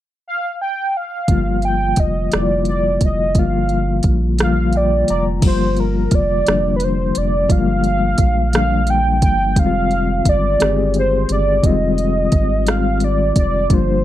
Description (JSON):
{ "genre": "slow six-eight R&B", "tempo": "58 BPM (dotted quarters)", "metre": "6/8", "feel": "straight", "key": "unclear", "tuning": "A4 = 440 Hz", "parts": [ { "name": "warm velvety synth lead", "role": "melody", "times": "0.3-14.0 s", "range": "Bb4 to G5", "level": "-19 LUFS", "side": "right 2 dB", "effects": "chorus, slapback echo" }, { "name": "reed electric piano", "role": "accompaniment", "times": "1.3-14.0 s", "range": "D3 to Bb5", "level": "-20 LUFS", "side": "left 5 dB", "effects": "fast tremolo" }, { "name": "round analog bass", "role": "bass", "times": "1.3-14.0 s", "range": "F1 to Bb1", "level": "-20 LUFS", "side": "right 1 dB", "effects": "none" }, { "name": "smooth R&B drum kit", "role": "drums", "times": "1.3-13.9 s", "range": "crash cymbal, hi-hat, kick drum, rim click", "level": "-17 LUFS", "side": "right 1 dB", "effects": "none" } ], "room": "little or no reverb", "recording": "dry, close 1970s-style studio recording", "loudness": "-14 LUFS", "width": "side -13 dB against mid", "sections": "0.0-1.3 A section; 1.3-5.4 B section; 5.4-14.0 C section", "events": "reed electric piano fill 4.4-5.4", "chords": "0.0 N.C.; 1.3 Gm7; 9.6 Fm9", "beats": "0.25 | 1.29 2.32 | 3.35 4.39 | 5.42 6.46 | 7.49 8.53 | 9.56 10.60 | 11.63 12.66 | 13.70" }